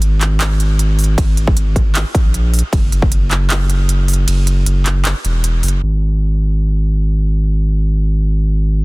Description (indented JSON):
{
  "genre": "future bass",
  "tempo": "155 BPM",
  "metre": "4/4",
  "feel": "swing 53% on 16ths, half-time",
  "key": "unclear",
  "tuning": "A4 = 440 Hz",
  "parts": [
    { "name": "saturated sub bass", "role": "bass", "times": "0.0-8.8 s", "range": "E1 to A#1", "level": "-14 LUFS", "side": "equal", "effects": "sidechain pumping" },
    { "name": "trap drum kit", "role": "drums", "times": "0.0-5.8 s", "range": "handclaps, hi-hat, ride cymbal", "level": "-21 LUFS", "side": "right 1 dB", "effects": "none" },
    { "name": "electronic kick drum", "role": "drums", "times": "1.2-3.1 s", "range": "none", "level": "-14 LUFS", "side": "equal", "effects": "overdrive" }
  ],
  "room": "digital ambience",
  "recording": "dense, heavily limited modern master, low-pass filter",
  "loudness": "-12 LUFS",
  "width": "side -24 dB against mid",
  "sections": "0.0-5.8 A section; 5.8-8.8 B section",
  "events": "drop 0.0-5.8; kick drops out 4.3-5.8",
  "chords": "none"
}